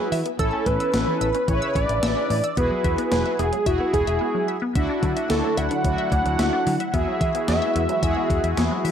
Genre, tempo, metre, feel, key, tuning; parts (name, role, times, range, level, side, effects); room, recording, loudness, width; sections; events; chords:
synth-pop; 110 BPM; 4/4; straight; A4 = 439 Hz
wide unison lead; melody; 0.0-8.8 s; F#4 to F#5; -24 LUFS; right 2 dB; slapback echo
analog synth brass; accompaniment; 0.0-8.9 s; C#3 to B4; -27 LUFS; left 1 dB; chorus
resonant blip pluck; arpeggios; 0.0-8.9 s; E3 to E6; -30 LUFS; left 1 dB; phaser, slapback echo
vintage muted fingered electric bass; bass; 0.1-8.9 s; E1 to E3; -26 LUFS; equal
gated 80s digital drum machine; drums; 0.1-8.9 s; hi-hat, kick drum, snare drum; -27 LUFS; left 1 dB; gated reverb, gated reverb snare, overdrive
phased analog pad; sustained chords; 5.2-8.9 s; D3 to F#4; -30 LUFS; left 1 dB; phaser, chorus
light reverb, digital ambience; -20 LUFS; side -8 dB against mid
0.0-8.9 A section
break 4.2-4.8
0.4 A; 2.6 Eadd9; 4.8 Dadd9; 6.9 Eadd9